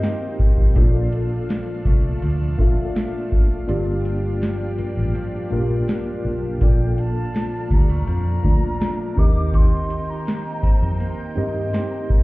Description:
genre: contemporary R&B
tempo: 82 BPM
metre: 4/4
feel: straight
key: unclear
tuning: A4 = 443 Hz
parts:
  - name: mellow tine electric piano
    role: accompaniment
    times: 0.0-12.2 s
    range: A3 to C6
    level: -27 LUFS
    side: left 1 dB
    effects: medium stereo tremolo
  - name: lush unison pad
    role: sustained chords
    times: 0.0-12.2 s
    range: D4 to G5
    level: -37 LUFS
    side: equal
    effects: chorus, sidechain pumping
  - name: direct-recorded clean electric guitar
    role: arpeggios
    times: 0.0-12.2 s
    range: G2 to G4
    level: -30 LUFS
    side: right 3 dB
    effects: wide subtle chorus
  - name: booming analog drum machine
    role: drums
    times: 0.0-12.2 s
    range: hi-hat, kick drum, snare drum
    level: -17 LUFS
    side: equal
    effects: none
  - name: vintage muted fingered electric bass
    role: bass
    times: 0.4-12.2 s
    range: G1 to G2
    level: -22 LUFS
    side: equal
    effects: none
  - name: breathy concert flute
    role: melody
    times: 6.6-11.2 s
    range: G5 to D6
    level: -32 LUFS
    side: equal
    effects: ping-pong delay
room: digital ambience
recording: heard muffled through a wall, club reverb, EQ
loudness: -18 LUFS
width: side -20 dB against mid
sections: 0.0-12.2 A section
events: break 3.7-6.6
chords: 0.0 Eb6; 0.8 Bbmaj7; 3.7 Gm7; 6.6 Bbmaj7; 9.2 Eb6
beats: 0.03 | 0.76 1.49 2.22 2.95 | 3.69 4.42 5.15 5.88 | 6.61 7.34 8.08 8.81 | 9.54 10.27 11.00 11.73

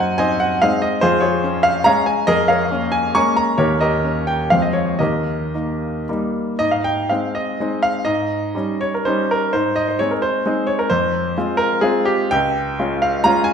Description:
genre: classical, romantic triple-time dance for piano with dotted rhythms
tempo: 108-152 BPM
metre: 3/4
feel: rubato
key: Ab major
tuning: A4 = 440 Hz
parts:
  - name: clear grand piano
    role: solo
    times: 0.0-13.5 s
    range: Db2 to Db6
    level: -16 LUFS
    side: equal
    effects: none
room: wet recital hall reverb, RT60 1.6 s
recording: recorded in a church or concert hall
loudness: -16 LUFS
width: side -7 dB against mid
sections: 0.0-6.6 A section; 6.6-13.5 B section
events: none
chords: 0.0 Ab7/Gb; 1.0 Db/F; 2.3 Bbm7/F; 3.6 Eb7; 4.5 Fm; 5.0 Eb; 6.6 Ab; 8.1 Eb7/Ab; 9.5 Ab; 10.9 Fm; 12.3 Db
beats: 0.18 0.61 | 1.00 1.42 1.84 | 2.26 2.70 3.15 | 3.58 4.04 4.50 | 5.00 5.55 6.08 | 6.59 7.09 7.59 | 8.05 8.54 9.05 | 9.53 9.98 10.45 | 10.90 11.36 11.81 | 12.32 12.79 13.23

